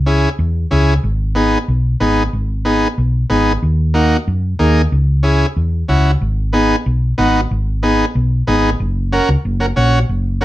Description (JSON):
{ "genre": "latin, cumbia", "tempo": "186 BPM", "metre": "4/4", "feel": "straight", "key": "G# minor", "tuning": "A4 = 440 Hz", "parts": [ { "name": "hollow-body short-scale fingered electric bass", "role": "bass", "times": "0.0-10.4 s", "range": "F#1 to F#2", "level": "-15 LUFS", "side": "equal", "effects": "none" }, { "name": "combo organ", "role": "accompaniment", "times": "0.1-10.4 s", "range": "A#3 to C#5", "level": "-15 LUFS", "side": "equal", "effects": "none" } ], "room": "moderate small room reverb, RT60 0.5 s", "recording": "heard from further back in the room", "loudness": "-13 LUFS", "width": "side -15 dB against mid", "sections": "0.0-8.8 A section; 8.8-10.4 B section", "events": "none", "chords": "0.0 C#m; 1.0 G#m; 3.6 D#m; 4.9 C#m; 6.2 G#m7; 8.8 F#" }